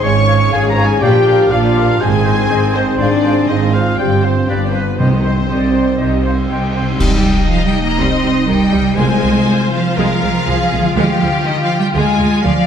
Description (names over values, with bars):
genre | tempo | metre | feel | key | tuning
cinematic, heroic adventure film score | 121 BPM | 4/4 | straight | C minor | A4 = 440 Hz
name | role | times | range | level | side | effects
rich symphonic violin section | melody | 0.0-12.7 s | F4 to Db6 | -23 LUFS | left 4 dB | none
dark clarinet | second line | 0.0-6.5 s | B4 to Db6 | -23 LUFS | left 1 dB | none
flute section | second line | 0.0-7.0 s | D5 to G5 | -27 LUFS | left 2 dB | none
warm oboe | second line | 0.0-6.9 s | B4 to D5 | -26 LUFS | equal | none
warm symphonic violin section | second line | 0.0-12.7 s | C5 to C6 | -24 LUFS | left 2 dB | none
rich symphonic viola section | accompaniment | 0.0-12.7 s | Eb3 to F5 | -22 LUFS | right 1 dB | none
clear trombone section | sustained chords | 0.0-6.7 s | Eb3 to D4 | -23 LUFS | right 4 dB | none
dark French horn section | sustained chords | 0.0-6.5 s | B3 to Db5 | -17 LUFS | left 2 dB | none
concert harp | arpeggios | 0.0-12.7 s | G2 to D5 | -22 LUFS | left 7 dB | none
rich symphonic cello section | bass | 0.0-12.7 s | G2 to C4 | -18 LUFS | right 3 dB | none
rich symphonic double bass section | bass | 0.0-12.5 s | G1 to D2 | -19 LUFS | right 4 dB | none
cymbal swell, clash cymbals and concert bass drum | percussion | 3.0-8.0 s | none | -21 LUFS | equal | none
timpani | percussion | 5.0-5.7, 9.0-9.7 s | C3 | -20 LUFS | equal | none
room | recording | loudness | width
wet scoring stage reverb, RT60 1.7 s | dark, warm production | -12 LUFS | side -8 dB against mid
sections
0.0-7.0 A section; 7.0-12.7 B section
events
band accent 7.0-7.5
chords
0.0 Db/Ab; 1.0 Bb; 2.0 Ab; 3.0 Fm/Ab; 4.0 G7sus4; 4.5 G7; 5.0 Cm; 9.0 Fm/C; 11.0 Ddim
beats
0.05 0.54 | 1.03 1.52 2.02 2.51 | 3.01 3.50 3.99 4.49 | 4.99 5.49 6.00 6.50 | 7.00 7.49 7.99 8.48 | 8.98 9.48 9.97 10.47 | 10.96 11.46 11.95 12.44